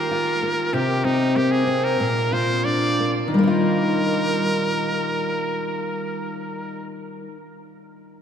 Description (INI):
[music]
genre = acoustic pop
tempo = 87-99 BPM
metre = 4/4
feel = straight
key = Eb major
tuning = A4 = 440 Hz
[part]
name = brilliant trumpet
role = melody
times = 0.0-6.9 s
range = Eb4 to D5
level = -25 LUFS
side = right 1 dB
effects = none
[part]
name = fingerpicked steel-string acoustic guitar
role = accompaniment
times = 0.0-7.4 s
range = Bb2 to G4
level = -21 LUFS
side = left 1 dB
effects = none
[sound]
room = wet cathedral reverb, RT60 5.9 s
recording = in a vast, echoing space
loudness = -19 LUFS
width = side -8 dB against mid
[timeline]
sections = 0.0-3.3 A section; 3.3-6.1 B section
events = slowing down 0.0-3.3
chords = 0.0 Ebadd9; 0.7 C5; 2.0 Bb; 3.3 Ebadd9